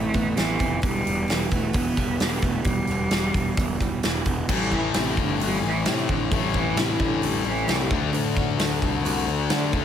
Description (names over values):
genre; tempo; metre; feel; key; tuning
quiet-loud alternative rock; 132 BPM; 4/4; straight; A dorian from 4.5 s; A4 = 439 Hz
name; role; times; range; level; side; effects
clear cello; melody; 0.0-8.4 s; A2 to B3; -27 LUFS; right 1 dB; slapback echo
picked steel-string acoustic guitar; arpeggios; 0.0-9.8 s; E2 to F#4; -31 LUFS; right 8 dB; none
fuzz picked electric bass; bass; 0.0-9.8 s; E1 to D3; -28 LUFS; equal; overdrive
big rock drum kit; drums; 0.1-9.8 s; crash cymbal, hi-hat, kick drum, snare drum; -26 LUFS; equal; none
thick fuzz guitar; riff; 4.5-9.8 s; A2 to D4; -26 LUFS; left 13 dB; distortion
room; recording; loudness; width
light reverb; none; -21 LUFS; side -9 dB against mid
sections
0.0-4.5 A section; 4.5-9.8 B section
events
cello solo 4.5-9.8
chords
0.0 Amadd9; 0.8 Em; 4.5 Am7; 7.9 D